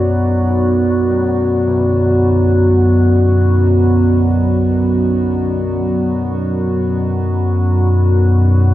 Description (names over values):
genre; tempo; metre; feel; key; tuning
dark ambient drone; free time; none; none; B minor; A4 = 439 Hz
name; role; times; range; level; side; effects
dark analog pad; sustained chords; 0.0-8.7 s; B3 to D5; -16 LUFS; equal; chorus
organ-like drone; drone; 0.0-8.7 s; B1 to F#2; -14 LUFS; equal; ensemble chorus, built-in reverb, phaser
bronze singing bowl; texture; 0.0-8.7 s; F#5; -41 LUFS; right 1 dB; none
carillon bells; arpeggios; 1.1-8.7 s; B2 to F#3; -30 LUFS; right 1 dB; none
room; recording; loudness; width
wet cathedral reverb, RT60 6.2 s; worn, warbling old tape, cassette tape, warbly pitch drift; -12 LUFS; side -14 dB against mid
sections
0.0-8.7 A section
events
none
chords
0.0 Bm